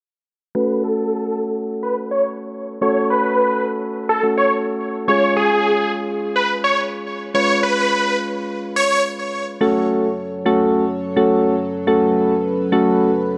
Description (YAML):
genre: pop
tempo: 106 BPM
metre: 4/4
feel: straight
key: F# minor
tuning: A4 = 441 Hz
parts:
  - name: soft electric-piano-like synth keys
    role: accompaniment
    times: 0.5-13.1 s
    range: G#3 to B4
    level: -22 LUFS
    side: equal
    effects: chorus, low-pass filter
  - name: supersaw chords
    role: melody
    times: 0.6-9.0 s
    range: G#4 to C#5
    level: -21 LUFS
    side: equal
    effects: low-pass filter, digital delay
  - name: chorused pulse-width pad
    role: sustained chords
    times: 9.6-13.4 s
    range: F#3 to C#5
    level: -25 LUFS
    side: equal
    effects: none
room: moderate plate reverb, RT60 3.0 s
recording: none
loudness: -19 LUFS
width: mono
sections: 0.6-9.6 A section; 9.6-13.4 B section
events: filter sweep 0.6-9.6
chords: 0.6 F#m; 5.1 C#; 9.6 F#m